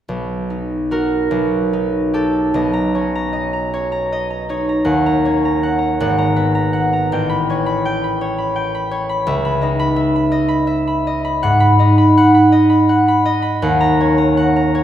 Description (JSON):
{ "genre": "classical, solo harp piece", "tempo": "46-57 BPM (dotted quarters)", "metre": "6/8", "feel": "rubato", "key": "B major, G# minor from 11.4 s", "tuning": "A4 = 439 Hz", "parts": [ { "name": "concert harp", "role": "solo", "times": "0.1-14.8 s", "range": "G#1 to B5", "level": "-14 LUFS", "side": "equal", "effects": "none" } ], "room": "wet church reverb, RT60 2.8 s", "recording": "minimal, uncompressed stereo recording", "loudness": "-14 LUFS", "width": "side -10 dB against mid", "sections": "0.1-2.5 A section; 2.5-14.8 B section", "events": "none", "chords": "0.1 Bmaj7; 1.3 D#/B; 2.5 Bmaj9; 4.9 D#m7; 6.0 G#m9; 7.1 A9; 9.3 C#m9; 11.4 G#m7; 13.6 D#m7" }